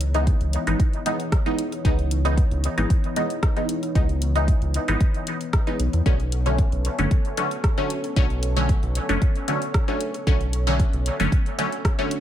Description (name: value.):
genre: dub techno.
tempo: 114 BPM.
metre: 4/4.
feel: straight.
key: C# minor.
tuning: A4 = 440 Hz.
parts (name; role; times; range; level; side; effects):
dark analog pad; sustained chords; 0.0-12.2 s; E3 to C#5; -32 LUFS; left 1 dB; chorus, sidechain pumping.
round analog bass; bass; 0.0-11.3 s; F#1 to E2; -23 LUFS; equal; sidechain pumping.
deep house drum kit; drums; 0.0-12.2 s; hi-hat, rim click; -33 LUFS; equal; none.
filtered dub chord stab; stabs; 0.1-12.2 s; D3 to D#4; -26 LUFS; equal; chorus, phaser, sidechain pumping, dub echo.
electronic kick drum; drums; 0.3-12.0 s; none; -21 LUFS; equal; none.
room: light reverb.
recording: none.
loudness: -20 LUFS.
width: side -11 dB against mid.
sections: 0.0-12.2 A section.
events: none.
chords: 0.0 C#m9; 6.1 Bm9.